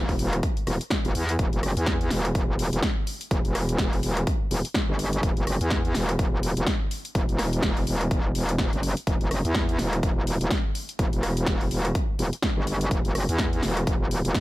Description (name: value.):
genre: bass house.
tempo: 125 BPM.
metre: 4/4.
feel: swing 58% on 16ths.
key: E minor.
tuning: A4 = 440 Hz.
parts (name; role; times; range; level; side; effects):
metallic wobble bass; bass; 0.0-14.3 s; E1 to E2; -25 LUFS; equal; distortion, chorus, sidechain pumping.
electronic kick drum; drums; 0.1-14.4 s; none; -26 LUFS; equal; studio reverb.
house drum kit; drums; 0.1-14.4 s; hi-hat, rim click, snare drum; -30 LUFS; equal; studio reverb.
room: little or no reverb.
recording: none.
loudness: -23 LUFS.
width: side -17 dB against mid.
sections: 0.0-14.4 A section.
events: none.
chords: none.